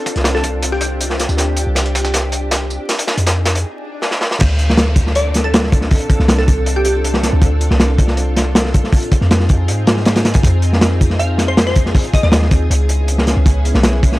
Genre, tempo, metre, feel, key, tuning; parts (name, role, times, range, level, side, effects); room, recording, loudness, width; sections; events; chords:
drum and bass, jungle; 159 BPM; 4/4; straight; D minor; A4 = 441 Hz
soft string machine; sustained chords; 0.0-14.2 s; B3 to A4; -23 LUFS; equal; ensemble chorus, vintage 12-bit sampler grit
crunchy breakbeat drum kit; drums; 0.1-14.2 s; crash cymbal, hi-hat, kick drum, snare drum; -14 LUFS; equal; high-pass filter on kick, high-pass filter on hats, high-pass filter on cymbals, high-pass filter on snare, high-pass filter on room
dusty soul sampler-style drum kit; drums; 0.1-3.5 s; hi-hat, snare drum, tambourine; -25 LUFS; right 1 dB; high-pass filter on perc, high-pass filter on snare, high-pass filter on hats
warm 808-style bass; bass; 0.2-14.2 s; B1 to Ab2; -16 LUFS; equal
glassy wavetable pluck; melody; 0.3-0.9, 5.2-6.9, 11.2-12.5 s; G4 to F5; -21 LUFS; equal; chorus, dub echo
swell and downlifter; sound effects; 3.8-7.4 s; -31 LUFS; equal
small room ambience; dry, gritty hardware recording, vinyl crackle; -12 LUFS; side -18 dB against mid
0.0-4.4 A section; 4.4-14.2 B section
build-up 0.0-4.4; drum fill 1.4-3.6, 4.0-4.4; break 3.6-4.4; swell 3.8-4.4; drop 4.4-14.2
0.0 Dm7; 2.9 Fm7; 4.4 Dm7; 8.9 Fm7; 12.7 C#m7